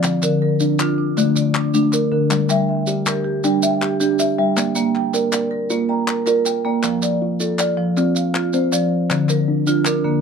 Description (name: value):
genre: southern african traditional, mbira-style interlocking cycle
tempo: 106 BPM (dotted quarters)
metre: 12/8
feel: straight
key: F major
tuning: A4 = 440 Hz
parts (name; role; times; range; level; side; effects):
- kalimba; arpeggios; 0.0-10.2 s; D3 to G5; -20 LUFS; right 1 dB; none
- marimba with medium hard mallets; arpeggios; 0.0-10.2 s; D3 to Bb5; -19 LUFS; equal; none
- group handclap; percussion; 0.0-10.0 s; none; -25 LUFS; left 4 dB; none
- maracas; percussion; 0.0-10.0 s; none; -26 LUFS; right 4 dB; none
room: light reverb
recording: dark, warm production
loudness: -16 LUFS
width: side -6 dB against mid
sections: 0.0-6.8 A section; 6.8-10.2 B section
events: none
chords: 0.0 Dm; 2.3 Gm; 4.6 Bb; 6.8 F; 9.1 Dm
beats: | 0.04 0.61 1.17 1.74 | 2.31 2.88 3.44 4.01 | 4.57 5.14 5.71 6.27 | 6.84 7.40 7.97 8.53 | 9.10 9.66